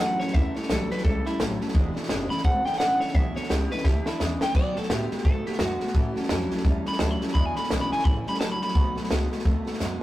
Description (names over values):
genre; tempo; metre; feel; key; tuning
rockabilly; 171 BPM; 4/4; swing 60% on 8ths; E mixolydian; A4 = 440 Hz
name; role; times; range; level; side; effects
electric guitar at the edge of break-up; melody; 0.0-9.3 s; E4 to B5; -29 LUFS; equal; spring reverb
picked steel-string acoustic guitar; accompaniment; 0.0-10.0 s; E2 to F#4; -32 LUFS; left 1 dB; none
electric guitar through a small old amp; riff; 0.0-10.0 s; E2 to A3; -32 LUFS; equal; none
upright bass; bass; 0.0-10.0 s; E1 to B2; -31 LUFS; equal; none
compact cocktail drum kit; drums; 0.2-9.9 s; hi-hat, kick drum, snare drum, splash cymbal; -26 LUFS; equal; none
room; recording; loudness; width
moderate small room reverb, RT60 0.5 s; rough rehearsal-room recording, tube saturation; -22 LUFS; side -15 dB against mid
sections
0.0-10.0 A section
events
drum fill 3.9-4.6, 9.8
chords
0.0 A7; 1.8 E7; 4.6 B7; 6.0 A7; 7.4 E7; 8.1 A7; 8.8 B7